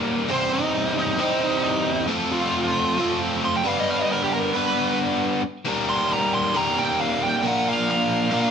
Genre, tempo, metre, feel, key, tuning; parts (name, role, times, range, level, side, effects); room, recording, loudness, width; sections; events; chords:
rock; 134 BPM; 4/4; straight; A4 = 440 Hz
biting overdriven guitar; riff; 0.0-8.5 s; E2 to C5; -22 LUFS; equal
fuzz lead guitar; melody; 0.3-8.5 s; Eb4 to C6; -24 LUFS; right 1 dB; wah, distortion
moderate studio reverb, RT60 0.9 s; band playing live in one room; -20 LUFS; side -7 dB against mid
0.0-8.5 A section
lead electric guitar solo 0.0-8.5
0.3 C/E; 2.1 F; 3.6 G; 5.7 Eb; 7.4 Bb